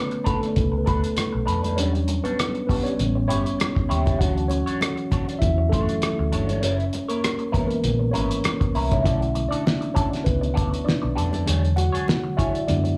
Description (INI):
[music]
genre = lush 1970s-style soul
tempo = 99 BPM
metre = 4/4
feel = swing 54% on 16ths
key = unclear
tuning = A4 = 440 Hz
[part]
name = mellow tine electric piano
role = accompaniment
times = 0.0-13.0 s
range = D3 to F#5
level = -27 LUFS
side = equal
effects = slapback echo
[part]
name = electric guitar through a small old amp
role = riff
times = 0.1-12.9 s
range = G3 to D5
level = -33 LUFS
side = equal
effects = wah, phaser, slapback echo
[part]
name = cloth-damped thuddy drum kit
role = drums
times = 0.1-13.0 s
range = hi-hat, kick drum, rim click, snare drum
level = -27 LUFS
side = equal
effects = none
[part]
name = congas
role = percussion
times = 0.3-12.8 s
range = none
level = -37 LUFS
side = equal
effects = none
[part]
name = vintage muted fingered electric bass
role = bass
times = 0.6-13.0 s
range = F#1 to F#2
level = -26 LUFS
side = equal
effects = none
[sound]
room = light reverb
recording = live gig heard through the venue's PA, club reverb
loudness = -23 LUFS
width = mono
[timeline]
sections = 0.0-13.0 A section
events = tine electric piano solo 0.0-13.0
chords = 0.0 Bm7; 1.8 Em9; 3.0 A7; 4.2 Dmaj7; 6.6 F#7 (rootless); 9.1 Bm7; 11.5 E13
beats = 0.57 1.18 | 1.78 2.39 3.00 3.60 | 4.21 4.81 5.42 6.02 | 6.63 7.24 7.84 8.45 | 9.05 9.66 10.27 10.87 | 11.48 12.08 12.69